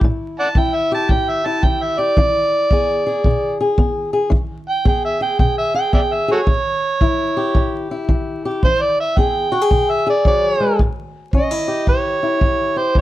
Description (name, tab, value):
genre	acoustic country blues, solo or duo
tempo	111 BPM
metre	4/4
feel	swing 64% on 8ths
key	A mixolydian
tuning	A4 = 437 Hz
part	fingerpicked swing-style acoustic guitar	accompaniment	0.0-13.0 s	A2 to G#4	-20 LUFS	left 2 dB	none
part	kick drum	drums	0.0-13.0 s	none	-18 LUFS	equal	none
part	overdriven harmonica	melody	0.4-13.0 s	F#4 to A5	-18 LUFS	right 2 dB	plate reverb
room	light reverb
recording	dark, warm production, vinyl crackle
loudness	-15 LUFS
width	side -14 dB against mid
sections	0.0-10.8 A section; 10.8-13.0 B section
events	harmonica solo 0.0-10.8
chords	0.0 A7(no3); 2.2 E7; 6.5 A7; 8.6 E7; 10.8 A7